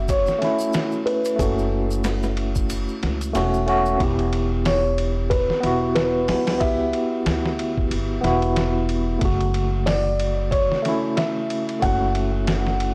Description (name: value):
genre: trip hop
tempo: 92 BPM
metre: 4/4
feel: swing 58% on 16ths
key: E dorian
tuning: A4 = 442 Hz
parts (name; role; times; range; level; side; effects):
- felt-muted upright piano; melody; 0.0-12.9 s; A4 to F#5; -27 LUFS; equal; tape echo
- tine electric piano; accompaniment; 0.0-12.9 s; C#3 to G4; -26 LUFS; equal; tremolo, vintage 12-bit sampler grit, tape echo
- upright bass; bass; 0.0-12.9 s; E1 to D2; -27 LUFS; equal; none
- trip hop sampler-style drum kit; drums; 0.1-12.9 s; hi-hat, kick drum, ride cymbal, snare drum; -29 LUFS; equal; none
- tube shaker and triangle; percussion; 0.1-4.0 s; none; -42 LUFS; equal; none
room: light reverb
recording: dry, gritty hardware recording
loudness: -22 LUFS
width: mono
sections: 0.0-4.0 A section; 4.0-12.9 B section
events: filter sweep on tine electric piano 0.0-4.0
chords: 0.0 F#m; 4.0 Em; 9.2 F#m